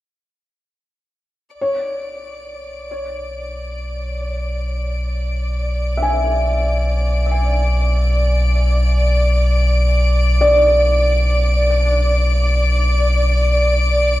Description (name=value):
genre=ambient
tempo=free time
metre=none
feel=none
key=B dorian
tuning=A4 = 438 Hz
part: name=warm sub bass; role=bass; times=1.5-14.2 s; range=B1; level=-16 LUFS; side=equal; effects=none
part: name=clear studio violin section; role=texture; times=1.5-14.2 s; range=D5 to D7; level=-22 LUFS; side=left 1 dB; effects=none
part: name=felt-muted upright piano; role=arpeggios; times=1.6-14.2 s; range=C#5 to G#5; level=-21 LUFS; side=equal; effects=analog delay
room=wet spring reverb, RT60 2.6 s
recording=echo-heavy mix, cassette tape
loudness=-14 LUFS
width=side -16 dB against mid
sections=1.5-14.2 A section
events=fade-in on felt piano 1.5-14.2; fade-in on sub bass 1.5-14.2; fade-in on violin section 1.5-14.2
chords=1.5 Bm